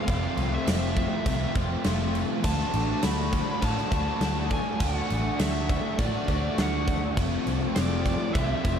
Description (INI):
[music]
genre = rock, shoegaze and dream pop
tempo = 102 BPM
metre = 4/4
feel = straight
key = unclear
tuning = A4 = 440 Hz
[part]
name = fuzz lead guitar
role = melody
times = 0.0-8.8 s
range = D5 to B5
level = -33 LUFS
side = left 1 dB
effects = distortion, ping-pong delay
[part]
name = crunchy overdriven guitar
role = riff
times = 0.0-8.8 s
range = F2 to F#4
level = -28 LUFS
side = left 1 dB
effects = analog chorus
[part]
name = vintage muted picked electric bass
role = bass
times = 0.1-8.8 s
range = F1 to A2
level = -30 LUFS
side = equal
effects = none
[part]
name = huge arena drum kit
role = drums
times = 0.1-8.8 s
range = crash cymbal, kick drum, snare drum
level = -29 LUFS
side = equal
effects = none
[sound]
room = wet cathedral reverb, RT60 5.8 s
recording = dreamy mix soaked in reverb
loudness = -24 LUFS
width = side -8 dB against mid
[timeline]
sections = 0.0-8.8 A section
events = none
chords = 0.0 Fmaj7; 2.4 D; 7.2 Fmaj7